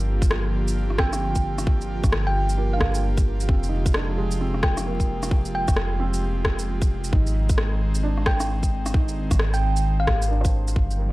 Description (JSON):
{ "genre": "future garage", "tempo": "132 BPM", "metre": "4/4", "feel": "swing 62% on 16ths", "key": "unclear", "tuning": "A4 = 442 Hz", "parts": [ { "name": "felt-muted upright piano", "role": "accompaniment", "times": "0.0-11.1 s", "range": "Ab3 to C5", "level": "-34 LUFS", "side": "right 3 dB", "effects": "vintage 12-bit sampler grit, sidechain pumping, analog delay" }, { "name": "airy breathy pad", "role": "sustained chords", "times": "0.0-11.1 s", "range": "C3 to G4", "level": "-30 LUFS", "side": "equal", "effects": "chorus, sidechain pumping" }, { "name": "soft 808-style bass", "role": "bass", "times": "0.0-11.1 s", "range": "F1 to Ab1", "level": "-24 LUFS", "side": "equal", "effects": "sidechain pumping" }, { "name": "electronic kick drum", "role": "drums", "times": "0.2-10.9 s", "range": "none", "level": "-21 LUFS", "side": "equal", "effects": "none" }, { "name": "electronic shaker and rim click", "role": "drums", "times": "0.2-11.0 s", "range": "none", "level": "-28 LUFS", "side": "equal", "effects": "none" }, { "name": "thumb-piano-like synth pluck", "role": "melody", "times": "1.0-10.3 s", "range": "F5 to G5", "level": "-31 LUFS", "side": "right 1 dB", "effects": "chorus, analog delay" } ], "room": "little or no reverb", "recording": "dry, gritty hardware recording, vinyl crackle", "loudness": "-20 LUFS", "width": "side -19 dB against mid", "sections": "0.0-10.8 A section", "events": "none", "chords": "0.0 Gm7; 3.5 Fmadd9; 7.1 Ab" }